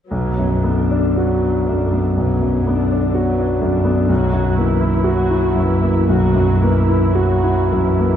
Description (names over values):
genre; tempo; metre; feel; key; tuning
classical, romantic movement for piano and orchestra; 52-63 BPM; 4/4; rubato; B minor; A4 = 440 Hz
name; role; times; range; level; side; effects
clear grand piano; melody; 0.1-8.2 s; B1 to F#4; -15 LUFS; equal; none
dark symphonic viola section; accompaniment; 0.1-8.2 s; D3 to F#4; -23 LUFS; left 1 dB; none
room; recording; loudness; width
wet recital hall reverb, RT60 1.3 s; recorded in a church or concert hall; -14 LUFS; side -9 dB against mid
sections
0.1-8.2 A section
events
none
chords
0.1 Bm; 4.1 F#7/B